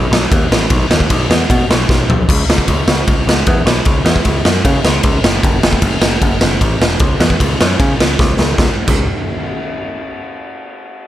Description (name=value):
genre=punk rock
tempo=152 BPM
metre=4/4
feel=straight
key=unclear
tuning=A4 = 440 Hz
part: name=picked electric bass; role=bass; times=0.0-9.1 s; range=E1 to C#3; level=-16 LUFS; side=equal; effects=none
part: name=raw garage drum kit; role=drums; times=0.1-9.0 s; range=crash cymbal, kick drum, ride cymbal, snare drum, toms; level=-13 LUFS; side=equal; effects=none
room=little or no reverb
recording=none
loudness=-11 LUFS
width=side -13 dB against mid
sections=0.0-8.6 A section; 8.6-10.2 B section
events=drum fill 1.9-2.3, 8.2-8.6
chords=none